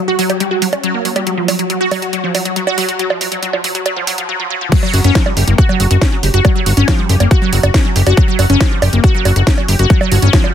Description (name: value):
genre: psychedelic trance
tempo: 139 BPM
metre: 4/4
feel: straight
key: unclear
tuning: A4 = 442 Hz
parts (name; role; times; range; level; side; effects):
- wide unison pluck; riff; 0.1-10.5 s; E#3 to G4; -16 LUFS; equal; auto-pan, cassette tape, sidechain pumping, ping-pong delay
- techno drum kit; drums; 0.2-10.5 s; bongos, crash cymbal, hi-hat, snare drum; -19 LUFS; right 3 dB; overdrive
- electronic kick drum; drums; 4.7-10.4 s; none; -12 LUFS; equal; none
- fat analog bass; bass; 4.9-10.3 s; F#1 to G1; -11 LUFS; equal; none
room: light reverb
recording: dense, heavily limited modern master, high-pass filter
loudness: -11 LUFS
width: side -9 dB against mid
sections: 0.0-4.7 A section; 4.7-10.5 B section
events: build-up 0.0-4.7; filter sweep on synth arpeggio sound 0.0-4.7; filter sweep 0.0-4.7; drop 4.7-10.5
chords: 0.0 F#5